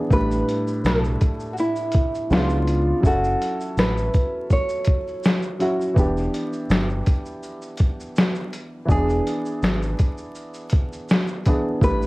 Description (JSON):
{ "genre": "lo-fi hip hop", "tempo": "82 BPM", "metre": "4/4", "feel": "swing 56% on 16ths", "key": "E dorian", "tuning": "A4 = 440 Hz", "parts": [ { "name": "warm upright piano", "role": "accompaniment", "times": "0.0-12.1 s", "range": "A2 to B4", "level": "-26 LUFS", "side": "equal", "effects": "cassette tape" }, { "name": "nylon-string guitar", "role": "melody", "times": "0.1-12.1 s", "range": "E4 to C#5", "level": "-25 LUFS", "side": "right 1 dB", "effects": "analog delay" }, { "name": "deep dub fingered electric bass", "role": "bass", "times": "0.1-12.1 s", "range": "E1 to C#2", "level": "-23 LUFS", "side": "equal", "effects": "none" }, { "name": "lo-fi sampler-style drum kit", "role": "drums", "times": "0.1-12.1 s", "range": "hi-hat, kick drum, shaker, snare drum", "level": "-20 LUFS", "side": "equal", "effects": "none" } ], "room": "moderate studio reverb, RT60 0.6 s", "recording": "worn, warbling old tape, cassette tape, vinyl crackle, warbly pitch drift", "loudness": "-19 LUFS", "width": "side -21 dB against mid", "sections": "0.0-12.1 A section", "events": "none", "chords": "0.1 A9sus4; 2.3 C#7b9; 3.0 F#m7; 6.0 Em7; 8.9 E7" }